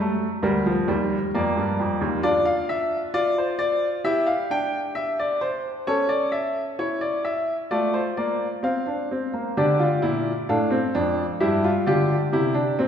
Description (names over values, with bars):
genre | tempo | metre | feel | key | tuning
classical, baroque-style 4-part fugue for grand piano | 66 BPM | 4/4 | straight | D minor from 9.5 s | A4 = 440 Hz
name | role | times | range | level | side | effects
warm baby grand piano | solo | 0.0-12.9 s | D2 to G5 | -21 LUFS | equal | none
room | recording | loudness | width
wet scoring stage reverb, RT60 1.9 s | heard from further back in the room | -21 LUFS | side -8 dB against mid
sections
0.0-9.5 A section; 9.5-12.9 B section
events
none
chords
0.4 Gm/D; 2.2 Dm; 4.0 D9sus4; 5.9 A/C#; 7.7 Dm/A; 9.5 Dm; 11.4 Em7/G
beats
0.42 1.32 | 2.23 3.13 4.04 4.94 | 5.85 6.77 7.70 8.62 | 9.55 10.47 11.39 12.31